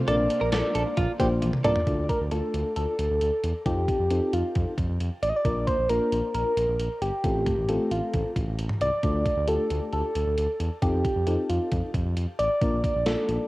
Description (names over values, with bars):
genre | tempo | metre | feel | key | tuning
synth-pop | 134 BPM | 4/4 | straight | D minor | A4 = 440 Hz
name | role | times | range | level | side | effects
soft struck synth lead | melody | 0.0-13.5 s | F4 to Eb5 | -27 LUFS | equal | chorus, cassette tape, analog delay, shimmer reverb
ensemble organ-string | sustained chords | 0.0-1.9 s | Bb3 to F4 | -36 LUFS | equal | phaser, ensemble chorus, cassette tape, shimmer reverb
direct-recorded clean electric guitar | second line | 0.1-1.7 s | F4 to Bb4 | -31 LUFS | right 2 dB | analog chorus, cassette tape, analog delay, shimmer reverb
FM electric piano with tremolo | accompaniment | 0.1-13.5 s | A3 to D5 | -29 LUFS | left 2 dB | cassette tape
smooth synth bass | bass | 0.1-13.4 s | G1 to F2 | -28 LUFS | equal | none
clean 12-bit digital drum machine | drums | 0.1-13.4 s | hi-hat, kick drum, snare drum, toms | -30 LUFS | equal | cassette tape
room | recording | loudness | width
moderate spring reverb, RT60 1.5 s | home recording on cassette | -23 LUFS | side -19 dB against mid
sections
0.0-1.9 A section; 1.9-13.5 B section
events
drum fill 1.4-1.9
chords
0.1 Bb; 1.9 Dm; 3.7 F7; 5.5 Bb; 7.2 F/A; 9.0 Dm; 10.8 F7; 12.6 Bb